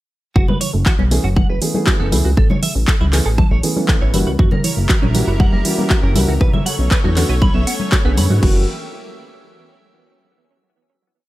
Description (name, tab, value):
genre	nu-disco, nu disco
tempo	119 BPM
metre	4/4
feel	straight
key	F# minor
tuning	A4 = 440 Hz
part	wide unison pluck	arpeggios	0.4-8.7 s	E3 to G#4	-26 LUFS	right 3 dB	sidechain pumping, tape echo
part	direct-recorded clean electric guitar	riff	0.4-8.7 s	C#4 to B5	-26 LUFS	right 3 dB	ensemble chorus, low-pass filter, digital delay
part	chorused synth bass	bass	0.4-8.7 s	F#1 to G#2	-17 LUFS	equal	none
part	electronic kick drum	drums	0.4-8.5 s	none	-15 LUFS	equal	overdrive
part	congas	percussion	0.5-8.3 s	none	-24 LUFS	left 2 dB	none
part	house drum kit	drums	0.6-8.5 s	crash cymbal, handclaps, hi-hat	-22 LUFS	right 1 dB	overdrive
part	dark grand piano	accompaniment	1.1-8.6 s	D3 to G#4	-23 LUFS	equal	sidechain pumping, digital delay
part	lush unison pad	sustained chords	4.4-8.7 s	G3 to E5	-28 LUFS	equal	chorus, sidechain pumping
room	digital ambience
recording	none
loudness	-13 LUFS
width	side -17 dB against mid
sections	0.4-8.4 groove; 8.4-10.4 final chord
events	none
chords	0.4 F#m11; 2.4 Amaj7; 4.1 F#7b9; 6.4 Bm9; 8.4 F#7b9